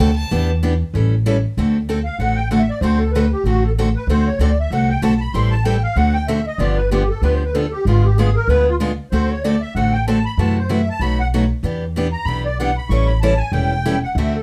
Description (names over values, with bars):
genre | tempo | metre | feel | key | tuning
acoustic string swing (jazz manouche) | 190 BPM | 4/4 | swing 58% on 8ths | D mixolydian | A4 = 440 Hz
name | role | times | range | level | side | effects
bright violin | melody | 0.0-0.5 s | A5 | -29 LUFS | equal | slapback echo, plate reverb
picked steel-string acoustic guitar | accompaniment | 0.0-14.4 s | B2 to A4 | -22 LUFS | equal | none
upright bass | bass | 0.0-14.4 s | E1 to F#2 | -21 LUFS | equal | none
musette accordion | second line | 2.0-14.4 s | E#4 to C#6 | -25 LUFS | equal | none
room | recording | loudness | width
light reverb | none | -18 LUFS | mono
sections
0.0-1.6 A section; 1.6-14.4 A section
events
violin solo 0.0-1.6; accordion solo 1.6-14.4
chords
0.3 Em7; 0.9 A7; 1.6 D7; 5.3 Am7; 6.0 D7; 6.6 G7; 7.9 G#dim7; 9.1 D7; 10.4 F#m7b5; 11.0 B7; 11.6 Em7; 12.9 A7